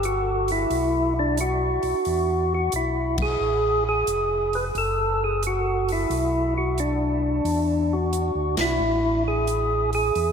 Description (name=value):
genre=soul jazz organ trio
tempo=89 BPM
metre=4/4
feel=swing 67% on 8ths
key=unclear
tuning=A4 = 443 Hz
part: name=percussive tonewheel organ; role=melody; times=0.0-10.3 s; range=D4 to Cb5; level=-22 LUFS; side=equal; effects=slow rotary speaker, overdrive
part: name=mellow tonewheel organ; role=bass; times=0.0-10.3 s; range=F1 to E2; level=-27 LUFS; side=equal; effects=slow rotary speaker
part: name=swinging big-band drum kit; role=drums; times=0.0-10.3 s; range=hi-hat, kick drum, ride cymbal, snare drum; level=-34 LUFS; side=right 1 dB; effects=none
room=wet cathedral reverb, RT60 5.6 s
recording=in a vast, echoing space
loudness=-21 LUFS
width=side -6 dB against mid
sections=0.0-10.3 A section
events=band accent 3.1-3.4, 8.5-8.8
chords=0.0 N.C.; 0.7 B5; 2.1 E5; 3.4 Fm; 4.8 F#m9; 6.1 Bm; 7.5 E5; 8.8 Amaj7(no3)